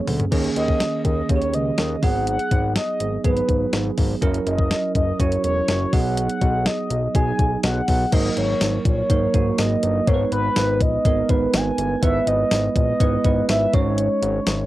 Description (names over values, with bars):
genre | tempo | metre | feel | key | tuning
1980s-style pop | 123 BPM | 4/4 | straight | unclear | A4 = 441 Hz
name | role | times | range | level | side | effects
mellow horn-like synth lead | melody | 0.0-14.7 s | B4 to G#5 | -24 LUFS | left 1 dB | chorus, cassette tape
bell-like tine electric piano | accompaniment | 0.0-14.7 s | D#3 to C#5 | -24 LUFS | right 5 dB | lush chorus, cassette tape
fat analog bass | bass | 0.1-14.6 s | E1 to D#2 | -24 LUFS | left 1 dB | none
clean 12-bit digital drum machine | drums | 0.1-14.6 s | crash cymbal, hi-hat, kick drum, snare drum, tambourine, toms | -22 LUFS | left 1 dB | cassette tape
room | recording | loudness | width
moderate booth ambience, RT60 0.2 s | home recording on cassette | -18 LUFS | side -16 dB against mid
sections
0.3-8.1 A section; 8.1-14.7 B section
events
drum fill 0.0-0.3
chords
0.3 D#7sus4; 2.0 G#m7; 4.2 F#7; 5.9 B6; 8.1 D#m/G#; 10.1 G#m; 12.0 E/G#; 13.7 C#sus2/G#